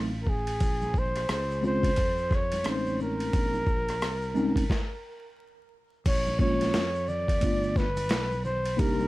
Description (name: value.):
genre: hip hop, jazz-hop.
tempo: 88 BPM.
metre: 4/4.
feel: swing 61% on 16ths.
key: Bb dorian.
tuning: A4 = 440 Hz.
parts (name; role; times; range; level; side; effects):
breathy flugelhorn; melody; 0.0-9.1 s; Ab4 to D5; -30 LUFS; equal; tape echo.
mellow tine electric piano; accompaniment; 0.0-9.1 s; Ab3 to G4; -28 LUFS; equal; medium stereo tremolo.
sustaining fretless electric bass; bass; 0.0-9.1 s; G1 to F2; -33 LUFS; equal; lush chorus.
boom bap sampler-style drum kit; drums; 0.3-9.0 s; crash cymbal, hi-hat, kick drum, ride cymbal, rim click, snare drum; -29 LUFS; equal; none.
tube shaker and congas; percussion; 0.6-9.1 s; none; -43 LUFS; right 1 dB; none.
room: little or no reverb.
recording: dry, gritty hardware recording, vinyl crackle.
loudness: -25 LUFS.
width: side -18 dB against mid.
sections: 0.0-6.1 A section; 6.1-9.1 B section.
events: stop 4.7-6.1.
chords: 0.0 F7b9 (rootless); 0.6 Bbm9; 6.1 Bbm7; 7.4 G7.